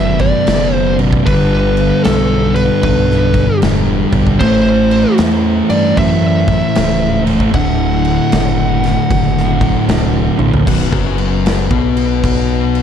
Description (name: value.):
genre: stoner and doom metal.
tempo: 76 BPM.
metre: 4/4.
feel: swing 65% on 8ths.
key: B phrygian.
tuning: A4 = 440 Hz.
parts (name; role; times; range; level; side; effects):
fuzz lead guitar; melody; 0.0-9.8 s; A4 to F#5; -18 LUFS; equal; distortion, analog delay.
percussive tonewheel organ; sustained chords; 0.0-12.8 s; D3 to C5; -26 LUFS; right 1 dB; none.
thick fuzz guitar; riff; 0.0-12.8 s; B1 to B3; -16 LUFS; left 10 dB; distortion.
thick fuzz guitar; riff; 0.0-10.7 s; B1 to A3; -16 LUFS; right 9 dB; distortion.
growling fingered electric bass; bass; 0.0-12.8 s; B0 to G2; -18 LUFS; equal; overdrive.
big rock drum kit; drums; 0.2-12.8 s; crash cymbal, kick drum, snare drum, toms; -19 LUFS; equal; none.
room: light reverb.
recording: dark, warm production.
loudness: -11 LUFS.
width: side -8 dB against mid.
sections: 0.0-10.7 A section; 10.7-12.8 B section.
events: drum fill 10.3-10.7.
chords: 0.0 Bm; 1.3 G; 4.4 Am; 7.5 D; 10.7 B5.